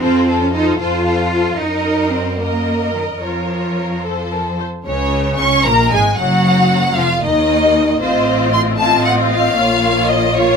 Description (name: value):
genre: quick classical-period movement for string orchestra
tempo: 76 BPM (dotted quarters)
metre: 6/8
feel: straight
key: Bb minor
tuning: A4 = 438 Hz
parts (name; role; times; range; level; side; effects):
- clear studio violin section; melody; 0.0-10.6 s; C5 to Db6; -18 LUFS; left 2 dB; none
- warm symphonic violin section; second line; 0.0-10.6 s; Db4 to Eb5; -20 LUFS; right 1 dB; none
- rich symphonic viola section; accompaniment; 0.0-10.6 s; Db3 to C5; -21 LUFS; left 3 dB; none
- clear studio double bass section; bass; 0.0-10.6 s; F1 to Gb2; -22 LUFS; right 2 dB; none
- clear symphonic cello section; bass; 0.0-10.6 s; Db2 to F4; -20 LUFS; right 1 dB; none
room: light reverb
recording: minimal, uncompressed stereo recording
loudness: -13 LUFS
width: side -6 dB against mid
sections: 0.0-4.9 A section; 4.9-10.6 B section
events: none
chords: 0.0 F; 1.6 Ebm/Gb; 3.2 Bbm/F; 4.0 F; 4.9 Bbm/Db; 6.4 Ebm; 8.0 F7/A; 9.6 Bbm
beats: | 0.03 0.81 | 1.59 2.39 | 3.22 4.04 | 4.86 5.66 | 6.45 7.23 | 8.01 8.79 | 9.57 10.34